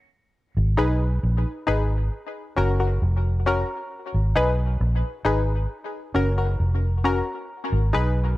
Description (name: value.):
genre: reggae.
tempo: 67 BPM.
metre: 4/4.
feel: straight.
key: G# dorian.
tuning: A4 = 441 Hz.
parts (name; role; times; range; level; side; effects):
vintage muted fingered electric bass; bass; 0.6-8.3 s; E#1 to B1; -21 LUFS; equal; none.
filtered dub chord stab; stabs; 0.8-8.1 s; C#4 to B4; -26 LUFS; left 2 dB; chorus, tape echo.
room: light reverb, digital ambience.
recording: none.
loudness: -21 LUFS.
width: side -17 dB against mid.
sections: 0.0-8.4 A section.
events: break 0.0-0.3.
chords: 0.3 G#m; 2.1 F#; 3.9 G#m; 5.7 F#; 7.5 G#m.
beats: | 0.33 1.23 2.12 3.02 | 3.91 4.80 5.70 6.59 | 7.49.